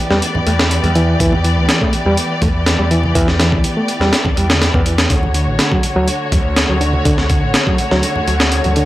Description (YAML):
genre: breakbeat, breaks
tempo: 123 BPM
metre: 4/4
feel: straight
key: E dorian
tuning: A4 = 440 Hz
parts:
  - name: dark symphonic string section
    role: sustained chords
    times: 0.0-8.9 s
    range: D3 to D5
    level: -20 LUFS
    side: left 1 dB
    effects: sidechain pumping
  - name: reed electric piano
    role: riff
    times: 0.1-8.9 s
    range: D3 to B3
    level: -18 LUFS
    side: equal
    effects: fast tremolo, vintage 12-bit sampler grit, analog delay
  - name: overdriven picked electric bass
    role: bass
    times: 0.1-8.9 s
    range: A1 to E2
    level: -18 LUFS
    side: equal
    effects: none
  - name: breakbeat sampler-style drum kit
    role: drums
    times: 0.1-8.9 s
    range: hi-hat, kick drum, snare drum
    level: -16 LUFS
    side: equal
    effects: none
  - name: congas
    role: percussion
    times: 0.3-8.7 s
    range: none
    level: -23 LUFS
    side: right 1 dB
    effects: none
room: light reverb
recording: dry, gritty hardware recording, transformer saturation, vinyl crackle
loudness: -12 LUFS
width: side -15 dB against mid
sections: 0.0-8.9 A section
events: none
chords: 0.0 Em7; 5.1 Dmaj7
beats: 0.22 0.71 | 1.20 1.69 2.18 2.66 | 3.15 3.64 4.13 4.62 | 5.10 5.59 6.08 6.57 | 7.05 7.54 8.03 8.52